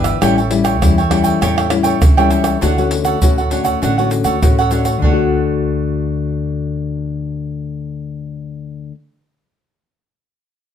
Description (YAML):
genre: samba and choro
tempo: 100 BPM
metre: 4/4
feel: straight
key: D major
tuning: A4 = 441 Hz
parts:
  - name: cavaquinho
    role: accompaniment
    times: 0.0-9.0 s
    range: D4 to G5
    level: -20 LUFS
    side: right 8 dB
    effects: none
  - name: nylon-string guitar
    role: accompaniment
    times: 0.0-9.0 s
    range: A2 to F#4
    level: -18 LUFS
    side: left 7 dB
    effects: none
  - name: upright bass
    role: bass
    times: 0.0-8.9 s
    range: G1 to E2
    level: -21 LUFS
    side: right 1 dB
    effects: none
  - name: egg shaker, pandeiro, tamborim and surdo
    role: percussion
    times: 0.0-5.2 s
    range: none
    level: -17 LUFS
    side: right 1 dB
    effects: none
room: moderate studio reverb, RT60 0.6 s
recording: none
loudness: -13 LUFS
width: side -9 dB against mid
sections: 0.0-2.6 A section; 2.6-5.0 B section; 5.0-7.4 C section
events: none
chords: 0.2 A7; 2.6 Dmaj7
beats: | 0.21 0.81 1.42 2.02 | 2.62 3.22 3.82 4.43 | 5.03 5.63 6.23 6.84